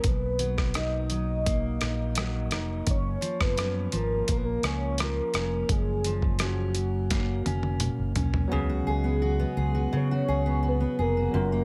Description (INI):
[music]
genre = indie pop, bedroom pop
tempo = 85 BPM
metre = 4/4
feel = straight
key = F# major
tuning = A4 = 443 Hz
[part]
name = soft octave-layered synth lead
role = melody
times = 0.0-11.6 s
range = F#4 to D#5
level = -34 LUFS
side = equal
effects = analog chorus, digital delay
[part]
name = fingerpicked steel-string acoustic guitar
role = accompaniment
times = 0.0-11.6 s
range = F#2 to G#4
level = -35 LUFS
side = equal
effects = subtle chorus, warbly pitch drift
[part]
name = fingered electric bass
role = bass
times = 0.0-11.6 s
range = E#1 to C#3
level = -31 LUFS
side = equal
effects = none
[part]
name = dusty soul sampler-style drum kit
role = drums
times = 0.0-8.5 s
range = hi-hat, kick drum, rim click, snare drum, toms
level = -32 LUFS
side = equal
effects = overdrive
[part]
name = barky tine electric piano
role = accompaniment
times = 8.5-11.6 s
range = F#3 to A#4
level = -36 LUFS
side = equal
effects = none
[sound]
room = light reverb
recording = none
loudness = -27 LUFS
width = mono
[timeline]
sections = 0.0-8.5 A section; 8.5-11.6 B section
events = drum fill 7.1-8.5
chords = 0.0 Bmaj7; 2.9 F#maj7; 8.5 C#7sus4